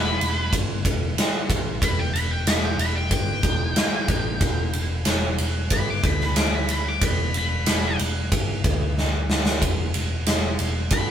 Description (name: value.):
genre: blues rock power trio and southern rock.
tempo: 92 BPM.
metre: 4/4.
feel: straight.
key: E minor.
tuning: A4 = 443 Hz.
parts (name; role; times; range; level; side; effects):
octave-fuzz lead guitar; melody; 0.0-11.1 s; B4 to D6; -27 LUFS; left 1 dB; wah, distortion.
hollow-body short-scale picked electric bass; bass; 0.0-11.1 s; E1 to D2; -26 LUFS; equal; none.
huge arena drum kit; drums; 0.2-11.1 s; kick drum, ride cymbal, snare drum; -22 LUFS; equal; none.
room: light reverb.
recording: band playing live in one room.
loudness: -20 LUFS.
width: side -9 dB against mid.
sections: 0.0-11.1 A section.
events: lead electric guitar solo 0.0-11.1; drum fill 9.0-9.6.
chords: 0.0 Em; 6.0 Bm/D; 7.0 Em; 8.6 N.C.; 9.6 Em.